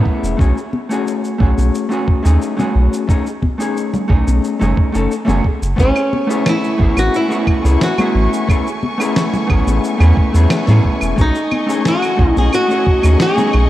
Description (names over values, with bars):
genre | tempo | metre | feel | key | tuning
sunset chillout | 89 BPM | 4/4 | straight | unclear | A4 = 438 Hz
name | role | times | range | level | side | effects
vintage hollow-body jazz guitar | accompaniment | 0.0-13.7 s | A3 to A4 | -18 LUFS | left 1 dB | auto-pan, tape echo
electronic kick drum | drums | 0.1-13.0 s | none | -15 LUFS | equal | studio reverb
round analog bass | bass | 0.2-13.7 s | E1 to A2 | -13 LUFS | equal | none
electronic shaker, claves and snare drum | drums | 0.2-13.7 s | none | -22 LUFS | right 1 dB | studio reverb
congas | percussion | 0.7-13.5 s | none | -23 LUFS | left 2 dB | none
flamenco guitar | melody | 5.8-13.7 s | C#4 to G#4 | -17 LUFS | equal | tape echo
bright symphonic string section | sustained chords | 5.8-13.7 s | A3 to C#6 | -24 LUFS | equal | none
room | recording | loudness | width
light reverb, small room ambience | worn, warbling old tape, cassette tape, warbly pitch drift | -13 LUFS | side -14 dB against mid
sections
0.0-13.7 A section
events
none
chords
0.4 B13; 5.8 Amaj7; 11.2 B13